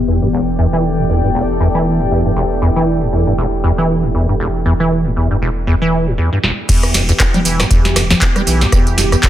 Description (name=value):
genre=acid house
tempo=118 BPM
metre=4/4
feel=swing 57% on 16ths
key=E minor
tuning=A4 = 440 Hz
part: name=lush unison pad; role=sustained chords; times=0.0-9.3 s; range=E3 to G4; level=-22 LUFS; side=equal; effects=chorus, phaser, sidechain pumping
part: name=liquid acid bass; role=riff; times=0.0-9.2 s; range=E1 to G3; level=-15 LUFS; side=equal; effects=chorus, sidechain pumping
part: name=saturated sub bass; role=bass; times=0.0-9.2 s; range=E1 to B1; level=-20 LUFS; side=equal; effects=sidechain pumping
part: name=deep dark ambient pad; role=texture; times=0.0-6.2 s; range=E4 to G5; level=-22 LUFS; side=equal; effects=chorus, built-in reverb, sidechain pumping
part: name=booming analog drum machine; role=drums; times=6.4-9.3 s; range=congas, crash cymbal, handclaps, hi-hat, ride cymbal, rim click, snare drum, tambourine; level=-15 LUFS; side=equal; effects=low-pass filter on snare, low-pass filter on hats, low-pass filter on cymbals, low-pass filter on perc, low-pass filter on toms, low-pass filter on room
part: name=electronic kick drum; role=drums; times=6.7-9.3 s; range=none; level=-14 LUFS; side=equal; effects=none
room=light reverb, digital ambience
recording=none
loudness=-12 LUFS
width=side -12 dB against mid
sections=0.0-6.7 A section; 6.7-9.3 B section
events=drum fill 6.4; drop 6.7-9.3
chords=0.0 Em